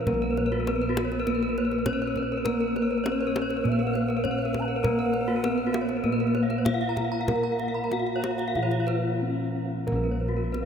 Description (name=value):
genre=Balinese gamelan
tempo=90-101 BPM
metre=4/4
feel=straight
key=Bb pelog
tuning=A4 = 440 Hz
part: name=gamelan-type bronze metallophone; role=melody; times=0.0-10.7 s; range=Bb3 to Bb4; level=-29 LUFS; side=left 1 dB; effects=none
part: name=bass bansuri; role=second line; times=0.0-7.1 s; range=Bb4 to Bb5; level=-38 LUFS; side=right 3 dB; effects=none
part: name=gamelan-type bronze metallophone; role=accompaniment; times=0.0-9.9 s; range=F3-45c to Bb3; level=-34 LUFS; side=right 2 dB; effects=none
part: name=gamelan-type bronze metallophone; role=arpeggios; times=0.0-10.6 s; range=Gb4-40c to Bb5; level=-32 LUFS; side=left 4 dB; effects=none
part: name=gamelan-type bossed gongs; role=bass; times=0.0-10.7 s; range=Bb1 to Bb4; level=-30 LUFS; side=equal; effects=none
part: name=gamelan-type bronze metallophone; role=arpeggios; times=0.1-10.7 s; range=Gb4-40c to Cb6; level=-34 LUFS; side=right 4 dB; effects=none
part: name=kendang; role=percussion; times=0.1-10.7 s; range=none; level=-36 LUFS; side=left 1 dB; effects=none
room=wet cathedral reverb, RT60 6.1 s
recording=in a vast, echoing space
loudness=-24 LUFS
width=side -7 dB against mid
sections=0.0-9.9 A section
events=drum fill 9.0-9.9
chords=none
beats=| 0.07 0.67 1.26 1.86 | 2.46 3.05 3.65 4.24 | 4.84 5.43 6.04 6.66 | 7.28 7.92 8.56 9.21 | 9.87 10.54